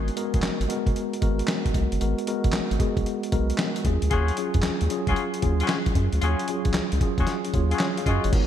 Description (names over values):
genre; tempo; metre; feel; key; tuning
R&B, new jack swing; 114 BPM; 4/4; swing 66% on 16ths; unclear; A4 = 440 Hz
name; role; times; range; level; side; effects
mellow tine electric piano; accompaniment; 0.0-8.5 s; F#3 to E#5; -27 LUFS; equal; medium stereo tremolo
round analog bass; bass; 0.0-8.5 s; F#1 to F#2; -25 LUFS; equal; none
dusty soul sampler-style drum kit; drums; 0.1-8.5 s; crash cymbal, handclaps, hi-hat, kick drum, snare drum; -26 LUFS; equal; gated reverb
mellow horn section; stabs; 4.1-8.3 s; C#4 to G#4; -31 LUFS; left 4 dB; ping-pong delay
room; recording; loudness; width
light reverb; bright 1980s-style digital production; -22 LUFS; side -10 dB against mid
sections
0.0-8.3 A section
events
none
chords
0.0 G#m9; 3.8 D#m11